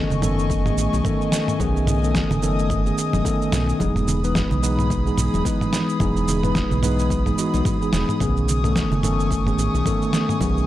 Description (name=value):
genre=sunset chillout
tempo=109 BPM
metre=4/4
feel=swing 58% on 16ths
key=E major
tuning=A4 = 440 Hz
part: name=mellow tine electric piano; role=accompaniment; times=0.0-10.7 s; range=D#3 to B4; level=-23 LUFS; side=equal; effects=auto-pan, tape echo
part: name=airy breathy pad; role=sustained chords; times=0.0-10.7 s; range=A3 to D#6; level=-28 LUFS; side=left 1 dB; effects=chorus
part: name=round analog bass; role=bass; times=0.0-10.7 s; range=E1 to B1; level=-23 LUFS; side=equal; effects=none
part: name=dusty soul sampler-style drum kit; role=drums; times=0.1-10.7 s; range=shaker, snare drum, toms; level=-26 LUFS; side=right 1 dB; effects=overdrive
part: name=congas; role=percussion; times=0.1-10.5 s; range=none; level=-29 LUFS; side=right 2 dB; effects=none
part: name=electronic kick drum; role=drums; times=0.5-10.5 s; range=none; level=-27 LUFS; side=equal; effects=none
room=digital ambience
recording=dry, gritty hardware recording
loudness=-18 LUFS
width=side -14 dB against mid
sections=0.0-10.7 A section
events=none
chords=0.0 B13; 3.8 Emaj7; 8.2 B13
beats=0.50 1.05 | 1.60 2.15 2.70 3.25 | 3.80 4.35 4.90 5.45 | 6.00 6.55 7.10 7.66 | 8.21 8.76 9.31 9.86 | 10.41